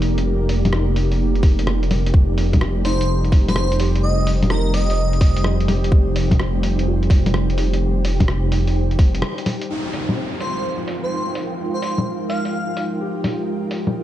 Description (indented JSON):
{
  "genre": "future garage",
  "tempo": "127 BPM",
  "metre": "4/4",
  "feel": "swing 67% on 16ths",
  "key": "F minor",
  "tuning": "A4 = 440 Hz",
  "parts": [
    { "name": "felt-muted upright piano", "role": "accompaniment", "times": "0.0-14.0 s", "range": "C4 to G4", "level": "-30 LUFS", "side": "left 2 dB", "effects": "sidechain pumping, tape echo" },
    { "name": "ethereal airy pad", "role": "sustained chords", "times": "0.0-14.0 s", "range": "G3 to G5", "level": "-26 LUFS", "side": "right 1 dB", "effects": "ensemble chorus, built-in reverb, sidechain pumping" },
    { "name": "dark detuned saw bass", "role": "bass", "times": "0.0-9.2 s", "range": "F1", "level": "-19 LUFS", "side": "equal", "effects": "sidechain pumping" },
    { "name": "lo-fi sampler-style drum kit", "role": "drums", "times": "0.0-13.9 s", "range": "bongos, hi-hat, rim click", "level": "-24 LUFS", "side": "left 1 dB", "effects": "low-pass filter on hats, vintage 12-bit sampler grit, studio reverb, low-pass filter on perc, low-pass filter on snare" },
    { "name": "wind-like tuned noise texture", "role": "texture", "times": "0.0-14.0 s", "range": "F3 to G4", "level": "-31 LUFS", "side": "right 1 dB", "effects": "built-in reverb" },
    { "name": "electronic kick drum", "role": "drums", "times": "1.4-9.1 s", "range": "none", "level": "-14 LUFS", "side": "equal", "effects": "overdrive, vintage 12-bit sampler grit, studio reverb" },
    { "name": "airy dreamy lead", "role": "melody", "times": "2.8-5.4, 10.4-12.8 s", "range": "Bb4 to F5", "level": "-26 LUFS", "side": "equal", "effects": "chorus, cassette tape, analog delay" },
    { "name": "downlifter", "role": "sound effects", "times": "9.7-13.5 s", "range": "none", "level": "-32 LUFS", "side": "equal", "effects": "none" }
  ],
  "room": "light reverb",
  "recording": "nothing above 10.4 kHz",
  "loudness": "-17 LUFS",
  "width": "side -13 dB against mid",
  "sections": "0.0-9.7 A section; 9.7-14.0 B section",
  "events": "break 9.2-9.7; band accent 9.2",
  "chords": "0.0 Fm11; 2.1 Cm/F; 9.7 Fm11",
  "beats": "| 0.25 0.72 1.20 1.67 | 2.14 2.61 3.09 3.56 | 4.03 4.50 4.98 5.45 | 5.92 6.39 6.87 7.34 | 7.81 8.28 8.76 9.23 | 9.70 10.17 10.65 11.12 | 11.59 12.06 12.54 13.01 | 13.48 13.95"
}